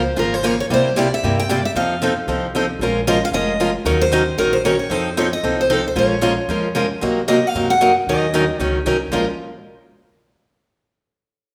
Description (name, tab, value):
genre	acoustic string swing (jazz manouche)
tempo	228 BPM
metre	4/4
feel	swing 55% on 8ths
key	Bb minor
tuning	A4 = 440 Hz
part	picked steel-string acoustic guitar	melody	0.0-9.3 s	A4 to G5	-23 LUFS	equal	none
part	upright bass	bass	0.0-9.3 s	F1 to G2	-29 LUFS	equal	none
part	picked steel-string acoustic guitar	accompaniment	0.2-9.2 s	Bb2 to Bb4	-21 LUFS	equal	none
room	wet large studio reverb, RT60 1.4 s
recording	band playing live in one room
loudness	-18 LUFS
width	mono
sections	0.0-7.0 A section; 7.0-9.1 B section; 9.1-10.2 C section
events	none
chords	0.0 Db6; 0.7 C7; 1.8 F7; 2.8 Bbm7; 3.9 Ebm7; 4.9 F7; 6.0 Bbm7; 7.0 Cm7b5; 8.1 Ebm7; 9.1 Bbm7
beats	0.18 0.44 | 0.70 0.96 1.23 1.49 | 1.75 2.02 2.28 2.54 | 2.80 3.07 3.33 3.59 | 3.85 4.12 4.38 4.64 | 4.91 5.17 5.43 5.70 | 5.96 6.22 6.49 6.75 | 7.01 7.28 7.54 7.80 | 8.07 8.33 8.59 8.86 | 9.12